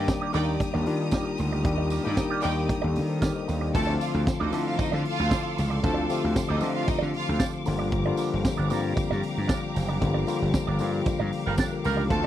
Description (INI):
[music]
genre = disco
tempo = 115 BPM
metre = 4/4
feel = straight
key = G minor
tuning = A4 = 440 Hz
[part]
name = clear studio string section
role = second line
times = 0.0-7.4, 12.1-12.2 s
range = Eb4 to A5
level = -32 LUFS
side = right 1 dB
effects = none
[part]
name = tine electric piano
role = accompaniment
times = 0.0-12.3 s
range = D3 to G5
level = -28 LUFS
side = left 4 dB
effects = none
[part]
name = clear studio string section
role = sustained chords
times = 0.0-12.3 s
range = D4 to Eb6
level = -36 LUFS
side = equal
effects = none
[part]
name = gritty slap bass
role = bass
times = 0.0-12.3 s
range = F#1 to Eb3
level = -28 LUFS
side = right 1 dB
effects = overdrive
[part]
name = electric guitar with an envelope filter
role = accompaniment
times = 0.1-12.3 s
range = Bb3 to D5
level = -34 LUFS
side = right 9 dB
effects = wah, phaser
[part]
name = vintage drum kit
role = drums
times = 0.1-12.2 s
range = crash cymbal, hi-hat, kick drum, snare drum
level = -28 LUFS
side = right 1 dB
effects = none
[part]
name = tambourine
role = percussion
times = 0.1-12.0 s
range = none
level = -46 LUFS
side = right 14 dB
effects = none
[part]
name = mellow horn section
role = stabs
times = 11.5-12.0 s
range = G3 to Bb4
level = -30 LUFS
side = right 4 dB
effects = none
[sound]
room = small room ambience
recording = dry, close 1970s-style studio recording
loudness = -24 LUFS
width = side -12 dB against mid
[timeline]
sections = 0.0-3.8 A section; 3.8-12.3 B section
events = band accent 10.0-12.1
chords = 0.0 Ebmaj7; 3.8 Dm7; 7.7 Gm7